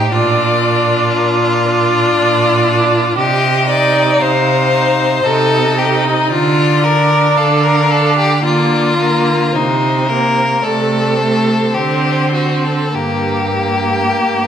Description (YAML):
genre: classical, slow romantic movement for string quartet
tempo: 47-60 BPM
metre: 3/4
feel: rubato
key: unclear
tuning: A4 = 442 Hz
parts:
  - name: rich violin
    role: melody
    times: 0.0-14.5 s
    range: Bb4 to F5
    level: -20 LUFS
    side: left 8 dB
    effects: none
  - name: clear violin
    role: second line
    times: 0.0-14.5 s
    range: Eb4 to D5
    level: -15 LUFS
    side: left 2 dB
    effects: none
  - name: rich viola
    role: accompaniment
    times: 0.0-14.5 s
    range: A3 to Eb4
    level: -17 LUFS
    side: right 3 dB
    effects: none
  - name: clear cello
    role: bass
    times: 0.1-14.5 s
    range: G2 to D3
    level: -17 LUFS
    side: right 4 dB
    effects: none
room: wet recital hall reverb, RT60 1.6 s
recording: none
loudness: -11 LUFS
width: side -8 dB against mid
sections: 0.0-14.5 A section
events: none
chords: 0.1 Bb; 3.2 Cm; 6.3 Dm; 8.4 Bb/D; 9.5 Cm7; 10.6 Amadd11/C; 11.7 D7; 12.9 Gm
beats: | 0.11 1.16 2.17 | 3.17 4.20 5.25 | 6.30 7.36 8.44 | 9.54 10.62 11.74 | 12.93 14.20